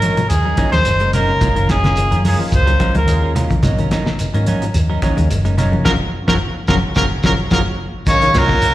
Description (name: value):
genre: afrobeat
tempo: 108 BPM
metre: 4/4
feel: swing 54% on 16ths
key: unclear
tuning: A4 = 440 Hz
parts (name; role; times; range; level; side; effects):
- clear trumpet; melody; 0.0-8.7 s; Ab4 to Db5; -18 LUFS; equal; slapback echo
- percussive tonewheel organ; accompaniment; 0.0-8.6 s; Gb3 to Gb4; -28 LUFS; equal; slow rotary speaker, slapback echo
- semi-hollow electric guitar; arpeggios; 0.0-8.7 s; Db3 to Ab3; -25 LUFS; left 5 dB; slapback echo
- semi-hollow electric guitar; stabs; 0.0-8.5 s; Gb3 to Bb4; -26 LUFS; right 5 dB; spring reverb, slapback echo
- hollow-body short-scale fingered electric bass; bass; 0.0-8.6 s; Gb1 to Ab2; -18 LUFS; equal; none
- cloth-damped thuddy drum kit; drums; 0.0-8.7 s; hi-hat, kick drum, snare drum; -21 LUFS; equal; none
- congas; percussion; 0.0-8.5 s; none; -21 LUFS; right 1 dB; none
- shekere; percussion; 0.0-8.7 s; none; -25 LUFS; equal; none
- raspy tenor saxophone; second line; 8.1-8.7 s; Gb3 to Bb3; -24 LUFS; right 2 dB; slapback echo
- warm trombone section; second line; 8.1-8.7 s; Bb2 to Db3; -24 LUFS; equal; slapback echo
room: little or no reverb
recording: live gig heard through the venue's PA, recital hall reverb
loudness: -13 LUFS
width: side -15 dB against mid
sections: 0.0-8.1 A section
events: band accent 5.9-8.1; drum fill 7.2-8.1; tonewheel organ fill 7.2-8.1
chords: 0.0 Gbmaj9; 5.9 Gbmaj7(no3); 8.1 Ab9sus4